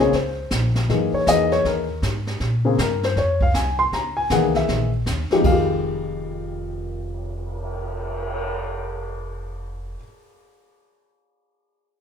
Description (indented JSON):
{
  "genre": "jazz piano trio",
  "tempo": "158 BPM",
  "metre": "4/4",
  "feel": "swing 64% on 8ths",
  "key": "F minor",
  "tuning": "A4 = 440 Hz",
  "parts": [
    { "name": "dark baby grand piano", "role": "melody", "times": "0.0-10.0 s", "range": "F2 to C6", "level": "-20 LUFS", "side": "left 3 dB", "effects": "none" },
    { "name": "upright bass", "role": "bass", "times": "0.0-9.9 s", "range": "F1 to Bb2", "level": "-26 LUFS", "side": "equal", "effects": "none" },
    { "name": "jazz brush drum kit", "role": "drums", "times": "0.0-8.4 s", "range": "brushed snare drum, crash cymbal, cymbal swell, hi-hat, kick drum, snare drum", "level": "-27 LUFS", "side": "right 1 dB", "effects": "none" }
  ],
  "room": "moderate large studio reverb, RT60 0.9 s",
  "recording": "minimal, uncompressed stereo recording",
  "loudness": "-20 LUFS",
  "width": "side -7 dB against mid",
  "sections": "0.0-5.4 A section; 5.4-8.5 B section",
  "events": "none",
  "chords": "0.0 Bbmadd9; 0.9 Gb13; 2.4 Bbm9; 3.9 Bbm11; 5.4 Fm9",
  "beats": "0.12 0.50 | 0.88 1.26 1.64 2.02 | 2.40 2.78 3.16 3.54 | 3.92 4.30 4.68 5.06 | 5.44 5.82 6.20 6.58 | 6.96 7.34 7.72 8.10"
}